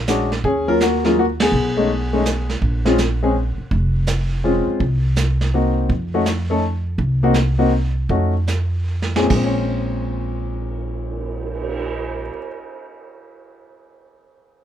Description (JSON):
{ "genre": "jazz piano trio", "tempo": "140-165 BPM", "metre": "3/4", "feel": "swing 65% on 8ths", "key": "Bb minor", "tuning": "A4 = 439 Hz", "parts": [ { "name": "upright bass", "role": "bass", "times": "0.0-12.3 s", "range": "F1 to F2", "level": "-21 LUFS", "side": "right 1 dB", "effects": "none" }, { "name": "clear grand piano", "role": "melody", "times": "0.1-12.5 s", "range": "Bb2 to Bb4", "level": "-19 LUFS", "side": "left 2 dB", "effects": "none" }, { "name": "vintage brush drum kit", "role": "drums", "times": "0.1-11.8 s", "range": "brushed snare drum, crash cymbal, cymbal swell, hi-hat, kick drum, ride cymbal, snare drum", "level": "-26 LUFS", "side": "right 4 dB", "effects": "none" } ], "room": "light reverb", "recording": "minimal, uncompressed stereo recording", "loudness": "-17 LUFS", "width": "side -10 dB against mid", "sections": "0.0-4.8 A section; 4.8-9.3 B section; 9.3-11.9 C section", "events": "band accent 1.4; slowing down 7.0-9.3; drum fill 8.9-9.3", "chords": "0.4 Ebm7; 1.5 B7sus2; 2.6 Bbm9; 4.8 Cm7b5; 5.9 F; 7.0 Cm7; 8.1 F(#5, no3); 9.3 Bbm9" }